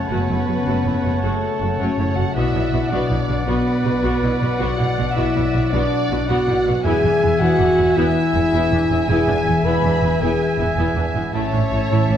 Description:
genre	cinematic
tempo	107 BPM (dotted quarters)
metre	12/8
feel	straight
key	unclear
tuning	A4 = 438 Hz
part	warm symphonic violin section	melody	0.0-12.2 s	A4 to B5	-27 LUFS	left 2 dB	none
part	clear clarinet	second line	0.0-12.2 s	C#5 to E5	-30 LUFS	left 1 dB	none
part	clear oboe	second line	0.0-12.2 s	F#5 to A5	-29 LUFS	right 2 dB	none
part	warm symphonic violin section	second line	0.0-12.2 s	C#5 to A5	-31 LUFS	equal	none
part	mellow French horn section	sustained chords	0.0-12.2 s	A3 to B4	-21 LUFS	left 1 dB	none
part	concert harp	arpeggios	0.0-12.2 s	F#2 to B4	-25 LUFS	left 6 dB	none
part	rich symphonic viola section	accompaniment	0.1-12.2 s	A3 to F#4	-26 LUFS	equal	none
part	rich symphonic cello section	bass	0.1-12.2 s	E2 to B2	-26 LUFS	right 2 dB	none
part	rich symphonic double bass section	bass	0.1-12.2 s	E1 to B1	-24 LUFS	right 3 dB	none
room	wet scoring stage reverb, RT60 2.1 s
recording	worn, warbling old tape, cassette tape, warbly pitch drift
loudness	-16 LUFS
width	side -9 dB against mid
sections	0.0-12.2 A section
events	none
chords	0.0 F#m; 2.4 Bm; 6.8 E; 11.3 A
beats	| 0.10 0.66 1.23 1.79 | 2.36 2.92 3.48 4.04 | 4.61 5.17 5.73 6.29 | 6.85 7.41 7.97 8.53 | 9.09 9.65 10.21 10.78 | 11.34 11.90

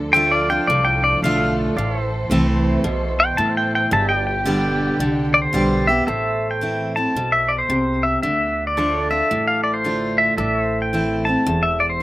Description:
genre	honky-tonk and classic country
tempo	111 BPM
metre	4/4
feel	swing 64% on 8ths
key	A minor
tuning	A4 = 440 Hz
part	picked steel-string acoustic guitar	accompaniment	0.0-12.0 s	E2 to G4	-22 LUFS	equal	slapback echo
part	dark symphonic string section	sustained chords	0.0-6.1 s	B2 to C5	-28 LUFS	right 1 dB	none
part	upright bass	bass	0.0-12.0 s	E1 to D2	-26 LUFS	equal	none
part	pedal steel guitar	melody	0.1-12.0 s	C5 to A5	-19 LUFS	left 1 dB	none
part	pedal steel guitar	sustained chords	0.1-12.0 s	G4 to F5	-30 LUFS	right 3 dB	wide subtle chorus
room	little or no reverb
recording	recorded outdoors, with no room sound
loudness	-17 LUFS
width	side -17 dB against mid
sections	0.0-6.1 A section; 6.1-12.0 B section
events	pedal steel guitar solo 0.0-6.1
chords	0.0 Dm; 1.8 Am; 3.9 G; 6.1 Am; 8.2 Dm; 10.4 Am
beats	0.14 0.68 1.22 | 1.76 2.30 2.84 3.38 | 3.92 4.46 4.99 5.53 | 6.07 6.61 7.15 7.69 | 8.23 8.77 9.31 9.85 | 10.39 10.93 11.46 12.00

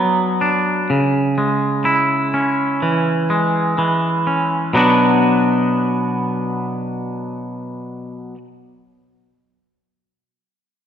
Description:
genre	rock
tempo	62 BPM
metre	4/4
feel	straight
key	B dorian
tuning	A4 = 440 Hz
part	twangy electric guitar	arpeggios	0.0-8.4 s	B2 to F#4	-16 LUFS	equal	slapback echo
room	wet lush hall reverb, RT60 1.9 s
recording	none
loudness	-15 LUFS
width	side -8 dB against mid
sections	0.0-4.7 A section; 4.7-8.6 B section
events	none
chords	0.0 Bm; 0.9 C#m; 4.7 Bm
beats	| 0.90 1.87 2.83 3.79 | 4.75 5.71 6.67 7.63

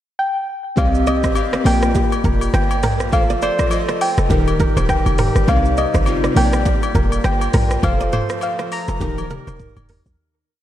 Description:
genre	afrobeats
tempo	102 BPM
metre	4/4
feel	swing 58% on 16ths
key	Bb major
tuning	A4 = 439 Hz
part	soft round pluck	melody	0.2-9.9 s	D5 to Bb5	-23 LUFS	equal	chorus, analog delay
part	glassy digital keys	accompaniment	0.8-10.2 s	C3 to F5	-23 LUFS	left 2 dB	chorus
part	warm woodwind section	sustained chords	0.8-10.2 s	Bb2 to Bb4	-28 LUFS	equal	none
part	kora	riff	0.8-10.0 s	G4 to Eb5	-27 LUFS	right 4 dB	analog delay
part	short 808-style bass	bass	0.8-10.2 s	Eb1 to C2	-19 LUFS	equal	none
part	afro-pop drum kit	drums	0.8-10.2 s	hi-hat, kick drum, rim click, shaker, toms	-21 LUFS	equal	vintage 12-bit sampler grit
part	agogo bells	percussion	0.8-9.9 s	none	-29 LUFS	left 6 dB	none
room	moderate lush hall reverb, RT60 1.8 s, digital ambience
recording	dreamy mix soaked in reverb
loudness	-15 LUFS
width	side -12 dB against mid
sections	0.0-0.8 pickup bar; 0.8-10.2 chorus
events	fade-out 7.8-10.2; drum fill 9.0-10.2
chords	0.0 N.C.; 0.8 Cmadd9; 1.7 Bb6; 3.1 F; 4.3 Eb; 5.5 Cmadd9; 6.4 Bb6; 7.8 F; 9.0 Eb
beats	0.18 | 0.77 1.36 1.95 2.54 | 3.13 3.71 4.30 4.89 | 5.48 6.07 6.66 7.24 | 7.83 8.42 9.01 9.60

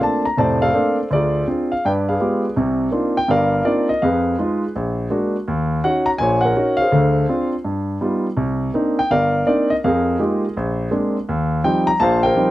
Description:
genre	solo jazz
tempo	165 BPM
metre	4/4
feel	swing 64% on 8ths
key	unclear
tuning	A4 = 440 Hz
part	warm concert grand piano	solo	0.0-12.5 s	F1 to Bb5	-16 LUFS	equal	none
room	little or no reverb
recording	recorded outdoors, with no room sound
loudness	-16 LUFS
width	side -15 dB against mid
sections	0.0-2.6 A section; 2.6-12.5 B section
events	none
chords	0.0 Bbmaj9; 1.1 Dm7b5; 1.8 G7b9; 2.6 Cm11; 4.0 Fm7b5; 4.7 Bb7b13; 5.5 Ebm7; 6.9 Dm7b5; 7.7 Gaug7; 8.4 Cm9; 9.8 Fm11; 10.6 Bb9; 11.3 Eb69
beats	0.01 0.37 0.74 | 1.10 1.47 1.83 2.20 | 2.56 2.92 3.29 3.65 | 4.02 4.38 4.75 5.11 | 5.47 5.84 6.20 6.56 | 6.93 7.29 7.65 8.02 | 8.38 8.74 9.11 9.47 | 9.83 10.19 10.56 10.92 | 11.28 11.64 12.01 12.37

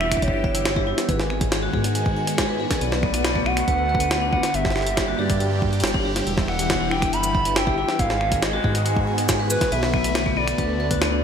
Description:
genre	IDM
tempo	139 BPM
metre	4/4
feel	straight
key	unclear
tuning	A4 = 440 Hz
part	warbly nostalgic lead	melody	0.0-11.2 s	B4 to B5	-26 LUFS	right 2 dB	chorus, ping-pong delay
part	phased analog pad	sustained chords	0.0-11.2 s	D3 to G4	-29 LUFS	equal	phaser, chorus
part	vibraphone with hard mallets	arpeggios	0.0-11.2 s	A3 to G#5	-27 LUFS	left 4 dB	digital delay
part	dark detuned saw bass	bass	0.0-11.2 s	E1 to G#2	-26 LUFS	equal	none
part	jungle sampler-style drum kit	drums	0.0-11.1 s	finger snaps, hi-hat, shaker, snare drum	-26 LUFS	equal	studio reverb, gated reverb, digital delay
part	electronic kick drum	drums	0.1-11.0 s	none	-26 LUFS	equal	studio reverb
room	light reverb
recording	bright 1980s-style digital production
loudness	-19 LUFS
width	side -7 dB against mid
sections	0.0-11.2 A section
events	none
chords	0.0 Em; 1.1 G#m7; 2.8 Bm7; 4.5 Gm; 6.3 Em; 8.0 G#m7; 9.7 Bm7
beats	0.22 0.66 | 1.09 1.52 1.95 2.38 | 2.81 3.25 3.68 4.11 | 4.54 4.97 5.40 5.83 | 6.27 6.70 7.13 7.56 | 7.99 8.43 8.86 9.29 | 9.72 10.15 10.58 11.02

